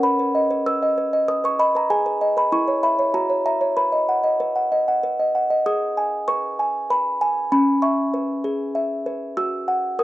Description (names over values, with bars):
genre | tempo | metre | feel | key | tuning
classical, lullaby for music box | 97 BPM | 3/4 | straight | B major | A4 = 440 Hz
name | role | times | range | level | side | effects
music box | solo | 0.0-10.0 s | C#4 to E6 | -18 LUFS | equal | none
room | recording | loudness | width
small room ambience | dry, close 1970s-style studio recording | -18 LUFS | side -16 dB against mid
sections
0.0-5.7 A section; 5.7-10.0 B section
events
none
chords
0.0 B; 1.9 G#m; 2.5 C#m/E; 3.1 F#7; 3.8 B; 5.7 G#m; 7.5 C#m7; 9.4 F#7(no3)